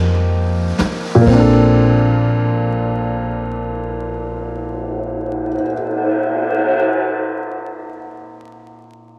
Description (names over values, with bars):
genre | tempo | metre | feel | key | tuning
jazz ballad | 42 BPM | 4/4 | swing 66% on 8ths | Bb major | A4 = 438 Hz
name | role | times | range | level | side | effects
warm grand piano | accompaniment | 0.0-9.2 s | Bb2 to A4 | -18 LUFS | equal | none
upright bass | bass | 0.0-5.6 s | Bb1 to F2 | -23 LUFS | equal | none
vintage brush drum kit | drums | 0.8-6.8 s | cymbal swell, kick drum, ride cymbal, snare drum | -24 LUFS | equal | none
room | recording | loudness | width
moderate echo chamber reverb, RT60 2.5 s | heavily compressed radio sound, vinyl crackle | -17 LUFS | mono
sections
0.0-1.3 A section; 1.3-7.1 B section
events
slowing down 0.0-1.3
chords
0.0 F7sus4; 1.3 Bbmaj7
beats
| 1.27 2.72 4.16 5.61